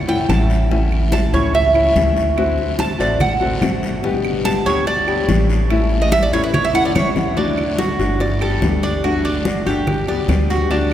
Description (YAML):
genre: latin, Cuban son and guajira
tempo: 144 BPM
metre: 4/4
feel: straight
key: D major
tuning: A4 = 442 Hz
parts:
  - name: Cuban tres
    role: arpeggios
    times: 0.0-10.9 s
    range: D4 to A5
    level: -20 LUFS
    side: right 2 dB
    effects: none
  - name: upright bass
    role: bass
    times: 0.0-10.9 s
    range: G1 to E2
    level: -20 LUFS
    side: equal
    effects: none
  - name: nylon-string guitar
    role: accompaniment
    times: 0.1-10.9 s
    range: B2 to G4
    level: -21 LUFS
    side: left 3 dB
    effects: none
  - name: bongos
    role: percussion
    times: 0.1-10.9 s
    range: none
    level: -28 LUFS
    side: left 3 dB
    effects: none
  - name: congas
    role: percussion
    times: 0.1-10.9 s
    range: none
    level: -24 LUFS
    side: left 1 dB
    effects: none
  - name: claves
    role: percussion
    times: 0.3-10.5 s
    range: none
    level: -37 LUFS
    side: right 5 dB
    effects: none
  - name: guiro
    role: percussion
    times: 0.3-10.9 s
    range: none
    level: -34 LUFS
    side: left 3 dB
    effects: none
room: wet cathedral reverb, RT60 6.1 s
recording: recorded in a church or concert hall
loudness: -15 LUFS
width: side -11 dB against mid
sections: 0.0-7.4 A section; 7.4-10.9 B section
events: Cuban tres solo 0.0-7.4; drum fill 6.5-7.4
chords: 0.0 A; 2.4 D7; 4.0 G; 5.7 A; 7.4 D; 8.2 Gadd9; 9.0 D; 9.9 G